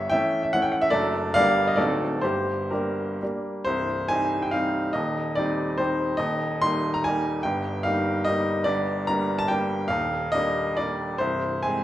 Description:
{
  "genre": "classical, romantic triple-time dance for piano with dotted rhythms",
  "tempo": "116-158 BPM",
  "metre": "3/4",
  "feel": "rubato",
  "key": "G minor, C minor from 3.7 s, G minor from 8.7 s",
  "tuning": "A4 = 440 Hz",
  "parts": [
    { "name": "clear baby grand piano", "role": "solo", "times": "0.0-11.8 s", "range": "C1 to C6", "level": "-22 LUFS", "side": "equal", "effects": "none" }
  ],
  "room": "wet recital hall reverb, RT60 1.3 s",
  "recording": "none",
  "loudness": "-22 LUFS",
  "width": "side -13 dB against mid",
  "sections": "0.0-3.7 A section; 3.7-11.8 B section",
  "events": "none",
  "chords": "0.0 A7/G; 0.9 D/F#; 1.4 Gm; 1.8 D7b9; 2.2 Gm; 3.7 Cm; 5.0 Cm/Eb; 6.2 Eb; 7.4 Eb/G; 8.7 Gm; 9.9 Ebmaj7; 11.2 Ab/C",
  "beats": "0.11 0.55 | 0.94 1.36 1.80 | 2.24 2.73 3.22 | 3.67 4.11 4.55 | 4.96 5.38 5.79 | 6.20 6.63 7.05 | 7.43 7.84 8.26 | 8.65 9.08 9.50 | 9.90 10.33 10.77 | 11.20 11.64"
}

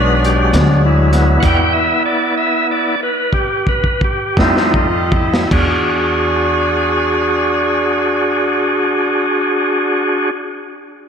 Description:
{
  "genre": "slow blues",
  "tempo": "50-68 BPM (dotted quarters)",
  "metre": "12/8",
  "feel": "straight",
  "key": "E mixolydian",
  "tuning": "A4 = 436 Hz",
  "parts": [
    { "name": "bright tonewheel organ", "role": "sustained chords", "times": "0.0-10.3 s", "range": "F#3 to G5", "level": "-15 LUFS", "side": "equal", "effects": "slow rotary speaker" },
    { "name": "warm saxophone section", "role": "sustained chords", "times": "0.0-10.3 s", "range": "F#4 to Eb5", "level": "-21 LUFS", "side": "right 1 dB", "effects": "none" },
    { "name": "upright bass", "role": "bass", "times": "0.0-10.3 s", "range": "B1 to F2", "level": "-17 LUFS", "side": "equal", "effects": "none" },
    { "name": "crunchy breakbeat drum kit", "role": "drums", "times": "0.2-5.7 s", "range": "crash cymbal, hi-hat, kick drum, snare drum", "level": "-18 LUFS", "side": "equal", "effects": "none" }
  ],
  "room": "wet plate reverb, RT60 2.7 s",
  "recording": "dreamy mix soaked in reverb",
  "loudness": "-12 LUFS",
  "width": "side -7 dB against mid",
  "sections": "0.0-5.5 A section; 5.5-10.3 B section",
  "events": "tonewheel organ solo 0.0-5.5; slowing down 0.2-5.5; stop 1.4-4.4; drum fill 3.3-5.5",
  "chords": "0.0 G#m7b5; 1.4 E9; 4.4 F9; 5.5 E9",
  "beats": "0.53 | 1.42 2.35 3.32 4.37 | 5.51 6.71 7.91 9.11"
}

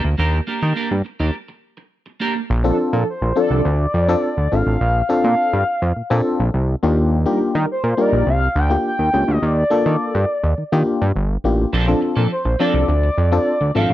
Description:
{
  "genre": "funk",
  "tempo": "104 BPM",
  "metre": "4/4",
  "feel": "straight",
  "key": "Bb major",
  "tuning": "A4 = 440 Hz",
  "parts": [
    { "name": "clean electric guitar", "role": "riff", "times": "0.0-2.4, 11.7-13.9 s", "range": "F3 to Bb4", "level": "-24 LUFS", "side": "right 3 dB", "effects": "analog chorus" },
    { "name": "fat analog bass", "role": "bass", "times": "0.0-13.9 s", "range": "G1 to Eb3", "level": "-17 LUFS", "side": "equal", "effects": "none" },
    { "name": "mellow synth brass", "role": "second line", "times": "2.6-3.6, 7.3-8.2, 11.9-12.8 s", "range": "F3 to Bb4", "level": "-23 LUFS", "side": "right 1 dB", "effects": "chorus" },
    { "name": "FM electric piano with tremolo", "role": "accompaniment", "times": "2.6-13.9 s", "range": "Bb3 to A4", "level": "-20 LUFS", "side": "left 3 dB", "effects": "none" },
    { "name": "gliding portamento lead", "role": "melody", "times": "3.1-13.9 s", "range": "C5 to G5", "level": "-21 LUFS", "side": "equal", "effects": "chorus, slapback echo" }
  ],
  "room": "little or no reverb",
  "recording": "none",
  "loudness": "-16 LUFS",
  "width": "side -14 dB against mid",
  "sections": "0.0-2.5 A section; 2.5-13.9 B section",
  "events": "break 1.3-2.5",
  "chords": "0.0 Ebmaj7; 2.5 Bbmaj9; 6.8 Ebmaj7; 11.7 Bbmaj9",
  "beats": "| 0.20 0.77 1.35 1.93 | 2.50 3.08 3.66 4.23 | 4.81 5.39 5.96 6.54 | 7.12 7.70 8.27 8.85 | 9.43 10.00 10.58 11.16 | 11.73 12.31 12.89 13.46"
}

